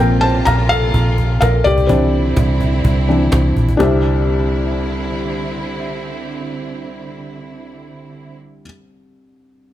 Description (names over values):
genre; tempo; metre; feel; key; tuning
piano-driven pop; 126 BPM; 4/4; straight; C mixolydian; A4 = 441 Hz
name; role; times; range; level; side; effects
felt-muted upright piano; accompaniment; 0.0-9.7 s; C2 to Bb5; -18 LUFS; left 2 dB; none
rich studio string section; sustained chords; 0.0-8.4 s; C3 to F4; -26 LUFS; right 4 dB; none
vintage muted fingered electric bass; bass; 0.0-8.6 s; Bb1 to C2; -17 LUFS; equal; none
cajon; drums; 0.2-3.9 s; none; -21 LUFS; equal; none
room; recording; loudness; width
light reverb; none; -14 LUFS; side -13 dB against mid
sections
0.0-3.8 A section; 3.8-7.6 B section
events
felt piano solo 0.0-3.8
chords
0.0 Bbsus2; 1.7 Cadd9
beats
0.46 0.94 1.42 | 1.89 2.37 2.85 3.32 | 3.80 4.27 4.75 5.22 | 5.70 6.18 6.65 7.13